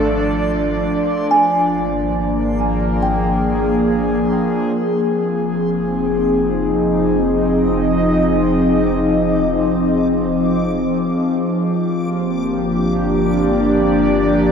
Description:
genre	ambient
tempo	free time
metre	none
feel	none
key	unclear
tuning	A4 = 440 Hz
part	airy breathy pad	sustained chords	0.0-14.5 s	F3 to Eb5	-15 LUFS	left 1 dB	chorus
part	round analog bass	bass	0.0-14.5 s	F1 to Ab1	-27 LUFS	equal	none
part	backwards swelling texture	texture	0.1-14.5 s	C6 to D6	-37 LUFS	left 3 dB	built-in reverb
part	kalimba	arpeggios	1.3-5.1 s	G5 to Ab5	-20 LUFS	right 1 dB	diffuse ambient delay
room	wet lush hall reverb, RT60 3.0 s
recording	dreamy mix soaked in reverb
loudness	-15 LUFS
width	side -6 dB against mid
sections	0.0-4.7 A section; 4.7-14.5 B section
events	fade-in on synth texture 4.7-14.5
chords	0.0 Dm/Ab; 1.3 Bb7/Ab; 4.7 Fm7; 11.6 Gm7

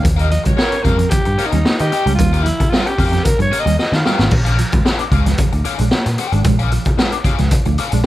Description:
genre	funk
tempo	113 BPM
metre	4/4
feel	straight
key	unclear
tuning	A4 = 439 Hz
part	growling alto saxophone	melody	0.0-4.3 s	Eb4 to F5	-20 LUFS	equal	plate reverb
part	crunchy overdriven guitar	accompaniment	0.0-8.1 s	Db4 to G5	-24 LUFS	left 6 dB	wah, spring reverb
part	mellow electric guitar	riff	0.0-8.0 s	F3 to Bb3	-24 LUFS	right 6 dB	phaser
part	vintage muted picked electric bass	bass	0.0-8.0 s	Ab1 to Eb3	-16 LUFS	equal	none
part	raw garage drum kit	drums	0.0-8.1 s	crash cymbal, hi-hat, kick drum, snare drum	-17 LUFS	equal	none
part	warm horn section	second line	0.2-2.0 s	F4 to Eb5	-25 LUFS	right 2 dB	slapback echo
room	light reverb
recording	none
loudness	-13 LUFS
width	side -15 dB against mid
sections	0.0-4.3 A section; 4.3-8.1 B section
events	alto saxophone solo 0.0-4.3; drum fill 3.8-4.3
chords	0.0 Eb9; 4.3 Bb7#9

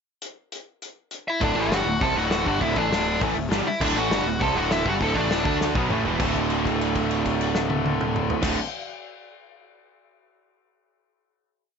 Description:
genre	punk rock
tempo	200 BPM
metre	4/4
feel	straight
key	D major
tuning	A4 = 442 Hz
part	loose indie drum kit	drums	0.2-8.5 s	crash cymbal, hi-hat, kick drum, snare drum, toms	-28 LUFS	left 1 dB	none
part	smooth overdriven lead guitar	melody	1.3-5.6 s	D4 to A5	-25 LUFS	left 1 dB	none
part	biting overdriven guitar	riff	1.4-8.6 s	D2 to D4	-28 LUFS	right 13 dB	none
part	crunchy overdriven guitar	riff	1.4-8.6 s	D2 to D4	-29 LUFS	right 2 dB	none
part	tight distorted guitar	riff	1.4-8.6 s	D2 to F#4	-29 LUFS	left 12 dB	distortion
part	fuzz picked electric bass	bass	1.4-8.6 s	D1 to D2	-29 LUFS	left 1 dB	overdrive
room	little or no reverb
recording	nothing above 7.8 kHz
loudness	-21 LUFS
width	side -6 dB against mid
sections	0.2-1.4 pickup bar; 1.4-6.2 riff; 6.2-8.6 final chord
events	drum fill 5.6-6.2; held note 6.2-8.4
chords	0.2 N.C.; 1.4 D

